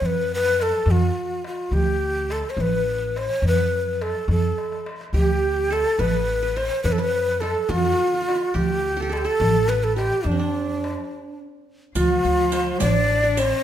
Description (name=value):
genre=Arabic maqam ensemble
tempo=70 BPM (dotted quarters)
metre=6/8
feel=straight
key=D maqam rast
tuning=A4 = 437 Hz
part: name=breathy ney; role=melody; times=0.0-13.6 s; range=D4 to D5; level=-22 LUFS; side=left 1 dB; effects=none
part: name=upright bass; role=bass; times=0.0-13.5 s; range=A1 to F#2-50c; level=-24 LUFS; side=equal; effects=none
part: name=darbuka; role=percussion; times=0.0-13.5 s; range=none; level=-29 LUFS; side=right 3 dB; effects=none
part: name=qanun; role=second line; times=5.1-13.6 s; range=C4+50c to D5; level=-30 LUFS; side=right 4 dB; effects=none
part: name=rich cello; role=second line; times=12.0-13.6 s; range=F3+40c to D4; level=-27 LUFS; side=left 6 dB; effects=none
part: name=riq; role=percussion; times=12.0-13.5 s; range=none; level=-33 LUFS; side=right 5 dB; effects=none
room=light reverb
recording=minimal, uncompressed stereo recording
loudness=-19 LUFS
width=side -10 dB against mid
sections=0.0-12.0 A section; 12.0-13.6 B section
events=drum fill 4.6-5.1; stop 11.1-12.0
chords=none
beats=| 0.02 0.88 | 1.73 2.58 | 3.44 4.29 | 5.14 5.99 | 6.85 7.70 | 8.55 9.40 | 10.26 11.11 | 11.96 12.81